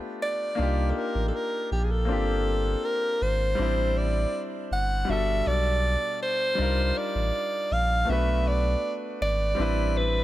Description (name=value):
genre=contemporary R&B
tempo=80 BPM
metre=4/4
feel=straight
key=unclear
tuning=A4 = 440 Hz
part: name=clear grand piano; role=accompaniment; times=0.0-10.2 s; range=B2 to C5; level=-31 LUFS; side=left 3 dB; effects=none
part: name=warm alto saxophone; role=melody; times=0.2-10.2 s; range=G4 to F#5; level=-27 LUFS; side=right 1 dB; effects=digital delay
part: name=warm sub bass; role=bass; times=0.6-10.2 s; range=G1 to C2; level=-26 LUFS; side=equal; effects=none
room=little or no reverb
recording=none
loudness=-24 LUFS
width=side -14 dB against mid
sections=0.0-10.2 A section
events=none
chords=0.0 G7; 0.6 Cm11; 2.1 Gm11; 3.6 Am7; 5.1 Gmaj7; 6.6 Cm11; 8.1 Bm7; 9.6 Am11